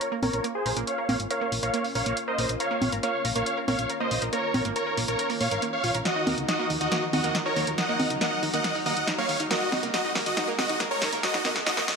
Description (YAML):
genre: uplifting trance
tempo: 139 BPM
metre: 4/4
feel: straight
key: Bb minor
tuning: A4 = 438 Hz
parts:
  - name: big supersaw lead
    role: melody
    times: 0.0-11.9 s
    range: Gb4 to Gb5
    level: -27 LUFS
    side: equal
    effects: low-pass filter, dub echo
  - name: lush unison pad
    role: sustained chords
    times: 0.0-12.0 s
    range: Eb3 to Bb4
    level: -36 LUFS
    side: left 1 dB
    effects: chorus
  - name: analog pluck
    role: arpeggios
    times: 0.0-11.9 s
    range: Bb3 to Bb4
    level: -33 LUFS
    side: right 4 dB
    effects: chorus, digital delay
  - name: punchy analog drum machine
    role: drums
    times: 0.0-12.0 s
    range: congas, hi-hat, snare drum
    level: -29 LUFS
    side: equal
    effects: none
  - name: riser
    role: sound effects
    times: 1.5-12.0 s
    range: none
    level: -41 LUFS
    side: right 1 dB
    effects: none
  - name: solid FM bass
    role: bass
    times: 0.2-12.0 s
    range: Ab1 to Bb2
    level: -33 LUFS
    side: left 1 dB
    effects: none
room: moderate lush hall reverb, RT60 1.8 s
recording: high-pass filter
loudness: -24 LUFS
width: side -5 dB against mid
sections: 0.0-12.0 A section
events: build-up 0.0-12.0; filter sweep on supersaw synth 0.0-12.0; filter sweep on synth pluck 0.0-12.0; filter sweep 0.0-12.0; drum fill 6.1-12.0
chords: 0.0 Bbm; 6.1 Ebm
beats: 0.01 0.44 | 0.87 1.31 1.74 2.17 | 2.60 3.03 3.46 3.90 | 4.33 4.76 5.19 5.62 | 6.05 6.49 6.92 7.35 | 7.78 8.21 8.64 9.08 | 9.51 9.94 10.37 10.80 | 11.23 11.66